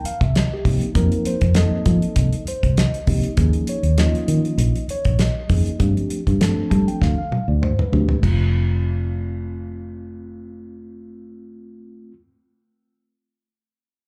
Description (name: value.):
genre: electric jazz fusion.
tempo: 99 BPM.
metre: 4/4.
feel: swing 54% on 16ths.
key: F mixolydian.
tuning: A4 = 442 Hz.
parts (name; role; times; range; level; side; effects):
mellow tine electric piano; accompaniment; 0.0-12.1 s; F3 to A5; -28 LUFS; equal; slapback echo.
fingered electric bass; bass; 0.0-12.1 s; F1 to G3; -21 LUFS; equal; none.
damped 70s drum kit; drums; 0.1-8.4 s; crash cymbal, hi-hat, kick drum, snare drum, toms; -24 LUFS; equal; none.
room: light reverb, small room ambience.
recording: live gig heard through the venue's PA, club ambience.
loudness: -19 LUFS.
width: mono.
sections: 0.0-8.2 A section; 8.2-10.7 B section.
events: tine electric piano fill 6.4-8.2; drum fill 7.0-8.2.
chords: 0.0 F9sus4; 3.4 Eb9sus4; 5.8 G9sus4; 8.2 F.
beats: 0.35 | 0.95 1.56 2.16 2.77 | 3.38 3.98 4.59 5.19 | 5.80 6.41 7.02 7.62 | 8.23 8.84 9.45 10.06.